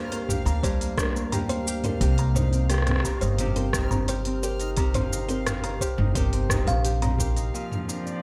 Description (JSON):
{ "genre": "folktronica", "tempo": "87 BPM", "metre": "4/4", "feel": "straight", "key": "unclear", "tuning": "A4 = 440 Hz", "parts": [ { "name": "Celtic harp", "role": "arpeggios", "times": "0.0-8.2 s", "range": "G2 to G4", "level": "-33 LUFS", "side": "equal", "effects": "low-pass filter, delay" }, { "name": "upright bass", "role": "bass", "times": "0.0-7.5 s", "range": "G1 to D2", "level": "-28 LUFS", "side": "equal", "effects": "none" }, { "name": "backwards swelling texture", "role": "texture", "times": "0.0-7.5 s", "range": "F5", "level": "-44 LUFS", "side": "equal", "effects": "built-in reverb" }, { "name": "kalimba", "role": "second line", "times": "0.1-7.4 s", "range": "Bb4 to Bb5", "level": "-35 LUFS", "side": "equal", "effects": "vintage 12-bit sampler grit, delay" }, { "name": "organic electronic drum kit", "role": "drums", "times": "0.1-8.2 s", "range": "cabasa, hi-hat, rim click, toms", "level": "-32 LUFS", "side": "equal", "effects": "none" }, { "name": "electronic kick drum", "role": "drums", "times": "0.3-7.3 s", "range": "none", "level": "-30 LUFS", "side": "equal", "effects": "none" }, { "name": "rich string quartet", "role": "sustained chords", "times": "7.5-8.2 s", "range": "F3 to D5", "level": "-35 LUFS", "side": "equal", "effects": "low-pass filter" } ], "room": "little or no reverb", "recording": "none", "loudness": "-25 LUFS", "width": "mono", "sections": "0.0-7.5 A section", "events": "none", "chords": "0.0 Gm7; 2.0 Cm; 7.5 Bbadd9" }